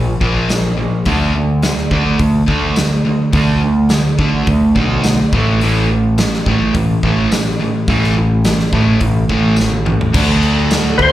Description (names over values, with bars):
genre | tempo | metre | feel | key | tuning
classic rock | 106 BPM | 4/4 | straight | unclear | A4 = 440 Hz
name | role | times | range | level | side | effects
raw garage guitar | riff | 0.0-11.1 s | A2 to D4 | -17 LUFS | right 4 dB | overdrive, slapback echo
sludgy distorted guitar | riff | 0.0-11.1 s | A2 to D4 | -20 LUFS | left 7 dB | overdrive, slapback echo
growling fingered electric bass | bass | 0.0-11.1 s | A1 to D3 | -16 LUFS | equal | overdrive
big rock drum kit | drums | 0.2-11.1 s | crash cymbal, hi-hat, kick drum, snare drum, toms | -19 LUFS | equal | none
tambourine | percussion | 0.5-10.8 s | none | -28 LUFS | left 3 dB | none
string machine, cellos | sustained chords | 10.1-11.1 s | F#3 to A4 | -26 LUFS | left 1 dB | none
overdriven tonewheel organ | melody | 11.0-11.1 s | B4 to C5 | -10 LUFS | left 3 dB | slow rotary speaker, chorus vibrato
room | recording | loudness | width
light reverb | live gig heard through the venue's PA, club reverb | -12 LUFS | side -13 dB against mid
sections
0.0-10.1 A section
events
drum fill 9.6-10.1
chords
0.0 Bb5; 1.1 D5; 5.3 A5; 10.1 D